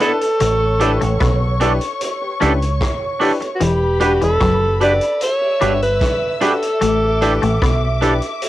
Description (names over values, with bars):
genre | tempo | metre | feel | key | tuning
lovers rock reggae | 75 BPM | 4/4 | straight | unclear | A4 = 440 Hz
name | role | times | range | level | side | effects
breathy alto saxophone | melody | 0.0-8.0 s | F#4 to D5 | -18 LUFS | equal | cassette tape, tape echo
dark studio string section | second line | 0.0-8.5 s | A4 to E6 | -25 LUFS | equal | none
clear grand piano | accompaniment | 0.0-8.2 s | D4 to B4 | -22 LUFS | left 4 dB | none
twangy electric guitar | stabs | 0.0-8.1 s | B3 to B4 | -18 LUFS | right 4 dB | wide subtle chorus
vintage drum kit | drums | 0.0-8.5 s | hi-hat, kick drum, rim click | -24 LUFS | equal | cassette tape
twangy electric guitar | riff | 0.4-7.9 s | E3 to C#4 | -22 LUFS | left 5 dB | ensemble chorus
deep dub fingered electric bass | bass | 0.4-8.2 s | E1 to C#2 | -19 LUFS | equal | none
room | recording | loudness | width
little or no reverb | home recording on cassette | -14 LUFS | side -14 dB against mid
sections
0.0-8.5 A section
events
none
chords
0.4 A7sus4; 3.6 Em7; 6.8 A7sus4